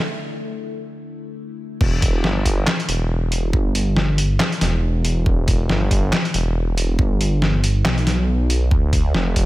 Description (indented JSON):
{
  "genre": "deep dubstep",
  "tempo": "139 BPM",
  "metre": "4/4",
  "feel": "swing 58% on 16ths, half-time",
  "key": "E phrygian",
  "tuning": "A4 = 440 Hz",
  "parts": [
    { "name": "overtone-sweeping drone", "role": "sustained chords", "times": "0.0-1.8 s", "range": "D3 to E4", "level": "-33 LUFS", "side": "left 3 dB", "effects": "chorus, built-in reverb, phaser" },
    { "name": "dark detuned saw bass", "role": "bass", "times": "1.8-9.5 s", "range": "E1 to D2", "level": "-19 LUFS", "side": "equal", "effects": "tube saturation" },
    { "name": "electronic kick drum", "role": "drums", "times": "1.8-9.5 s", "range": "none", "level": "-18 LUFS", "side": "equal", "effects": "none" },
    { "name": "trip hop sampler-style drum kit", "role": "drums", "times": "1.8-9.5 s", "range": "crash cymbal, handclaps, hi-hat, snare drum", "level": "-22 LUFS", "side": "left 1 dB", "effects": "none" }
  ],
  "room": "little or no reverb",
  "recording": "none",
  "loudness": "-17 LUFS",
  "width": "side -17 dB against mid",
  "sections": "0.0-1.8 A section; 1.8-9.5 B section",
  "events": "build-up 0.0-1.8; break 0.1-1.8; drop 1.8-9.5",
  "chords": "0.0 D5; 1.8 Em; 8.7 Dm"
}